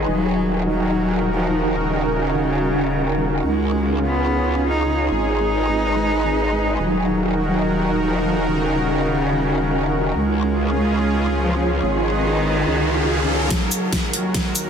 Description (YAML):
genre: heavy wobble dubstep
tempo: 143 BPM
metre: 4/4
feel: half-time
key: Eb minor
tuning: A4 = 440 Hz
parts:
  - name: supersaw pad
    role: sustained chords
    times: 0.0-14.7 s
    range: Eb2 to F5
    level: -25 LUFS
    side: right 1 dB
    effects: sidechain pumping, low-pass filter
  - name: growl bass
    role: bass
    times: 0.0-13.5 s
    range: Eb1 to Db2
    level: -23 LUFS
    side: equal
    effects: chorus, overdrive
  - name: ethereal airy pad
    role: texture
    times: 0.0-14.7 s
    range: Eb4 to Bb5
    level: -25 LUFS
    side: right 2 dB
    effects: ensemble chorus, built-in reverb, sidechain pumping
  - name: dark cello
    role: melody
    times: 0.1-14.7 s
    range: Db3 to Eb4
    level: -22 LUFS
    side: equal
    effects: low-pass filter, ping-pong delay
  - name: riser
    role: sound effects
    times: 11.6-14.7 s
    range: none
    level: -27 LUFS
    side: right 1 dB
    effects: none
  - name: dubstep drum kit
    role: drums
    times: 13.5-14.6 s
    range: hi-hat, shaker, snare drum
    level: -22 LUFS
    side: equal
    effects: overdrive
  - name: electronic kick drum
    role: drums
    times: 13.5-14.4 s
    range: none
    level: -25 LUFS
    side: equal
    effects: none
room: moderate lush hall reverb, RT60 2.0 s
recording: dense, heavily limited modern master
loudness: -17 LUFS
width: side -7 dB against mid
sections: 0.0-13.5 A section; 13.5-14.7 B section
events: filter sweep on supersaw synth 0.0-13.5; riser 11.6-13.5, 13.5-14.7; build-up 13.5-14.7; drum fill 13.5-14.7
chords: 0.1 Ebm; 3.4 Db; 5.1 Abm; 6.8 Ebm; 10.1 Db; 11.8 Abm; 12.7 Db; 13.5 Ebm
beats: | 0.08 0.50 0.92 1.34 | 1.76 2.18 2.60 3.02 | 3.44 3.86 4.28 4.70 | 5.11 5.53 5.95 6.37 | 6.79 7.21 7.63 8.05 | 8.47 8.89 9.31 9.73 | 10.15 10.57 10.99 11.41 | 11.83 12.25 12.67 13.09 | 13.51 13.93 14.35